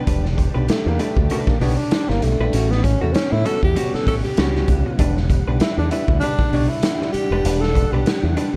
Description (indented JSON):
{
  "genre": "funk",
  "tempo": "98 BPM",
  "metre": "4/4",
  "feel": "swing 56% on 16ths",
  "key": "E dorian",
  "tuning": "A4 = 440 Hz",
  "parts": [
    { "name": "breathy tenor saxophone", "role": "melody", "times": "0.0-8.2 s", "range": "A3 to A4", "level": "-26 LUFS", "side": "equal", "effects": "none" },
    { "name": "vintage hollow-body jazz guitar", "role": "accompaniment", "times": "0.0-8.5 s", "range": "G3 to C#5", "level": "-29 LUFS", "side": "equal", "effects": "none" },
    { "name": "soft string machine", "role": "sustained chords", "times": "0.0-8.6 s", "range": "G3 to F#5", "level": "-33 LUFS", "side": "equal", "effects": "ensemble chorus" },
    { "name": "fingered electric bass with an envelope filter", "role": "bass", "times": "0.1-8.6 s", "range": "E1 to A2", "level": "-23 LUFS", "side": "equal", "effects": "none" },
    { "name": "raw garage drum kit", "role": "drums", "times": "0.1-8.5 s", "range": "hi-hat, kick drum, snare drum", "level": "-23 LUFS", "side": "equal", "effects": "none" }
  ],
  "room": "light reverb",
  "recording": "dark, warm production",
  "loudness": "-19 LUFS",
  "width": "mono",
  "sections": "0.0-8.6 A section",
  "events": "tenor saxophone solo 0.0-8.6",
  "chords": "0.0 Em7; 2.5 A13; 5.0 Em7"
}